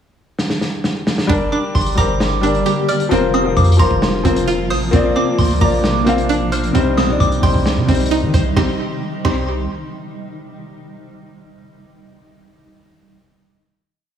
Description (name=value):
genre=hip hop, trap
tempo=132 BPM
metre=4/4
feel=half-time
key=C minor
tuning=A4 = 441 Hz
part: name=vintage drum kit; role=drums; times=0.4-9.4 s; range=crash cymbal, hi-hat, kick drum, snare drum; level=-19 LUFS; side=equal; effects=none
part: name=dark grand piano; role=accompaniment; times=1.3-9.5 s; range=C3 to F5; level=-19 LUFS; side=left 4 dB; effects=none
part: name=granular cloud pad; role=sustained chords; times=1.8-8.8 s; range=C3 to G4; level=-24 LUFS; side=equal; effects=built-in reverb
part: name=string-like resonator pluck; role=arpeggios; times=1.3-9.5 s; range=C4 to Bb5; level=-22 LUFS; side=right 5 dB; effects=chorus, tape echo
part: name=long sustained 808-style bass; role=bass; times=1.3-9.7 s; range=F1 to Eb3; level=-20 LUFS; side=equal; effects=none
part: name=soft synth bell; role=second line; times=1.5-9.5 s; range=C6 to F6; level=-24 LUFS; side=right 2 dB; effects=chorus, phaser, tape echo
room=moderate plate reverb, RT60 1.8 s, small room reverb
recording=dreamy mix soaked in reverb, small room ambience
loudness=-14 LUFS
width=side -9 dB against mid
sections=0.0-1.3 pickup bar; 1.3-8.6 hook; 8.6-10.4 final chord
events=drum fill 0.4-1.3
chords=0.0 N.C.; 1.3 Gm; 3.1 Fsus4; 4.9 Bbadd9; 6.7 Cm